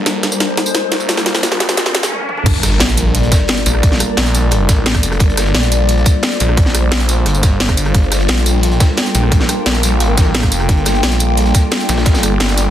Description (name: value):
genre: dark technical drum and bass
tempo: 175 BPM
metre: 4/4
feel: straight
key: G minor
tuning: A4 = 441 Hz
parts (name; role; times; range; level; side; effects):
- swarming drone; sustained chords; 0.0-12.7 s; G3 to D5; -22 LUFS; equal; built-in reverb, sidechain pumping
- snarling distorted saw bass; bass; 0.0-12.7 s; F1 to Bb1; -16 LUFS; equal; distortion, sidechain pumping, high-pass filter
- riser and impact; sound effects; 0.0-3.8 s; none; -23 LUFS; equal; none
- warbly tape-like pad; texture; 0.0-12.7 s; Bb3 to G5; -22 LUFS; left 2 dB; chorus, built-in reverb, sidechain pumping
- drum and bass drum kit; drums; 0.1-12.6 s; crash cymbal, hi-hat, rim click, snare drum, tambourine, toms; -17 LUFS; equal; overdrive, small room reverb
- crunchy breakbeat drum kit; drums; 2.5-12.7 s; hi-hat, snare drum; -26 LUFS; equal; high-pass filter on hats, small room reverb, high-pass filter on snare, high-pass filter on room
- electronic kick drum; drums; 2.5-12.1 s; none; -12 LUFS; equal; overdrive, small room reverb
room: light reverb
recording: dense, heavily limited modern master, high-pass filter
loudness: -11 LUFS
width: side -11 dB against mid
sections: 0.0-2.5 A section; 2.5-12.7 B section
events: build-up 0.0-2.5; drum fill 0.0-2.1, 2.1-2.5; riser 0.0-2.5; break 2.1-2.5; drop 2.5-12.7; impact 2.5-3.8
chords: 0.0 Gm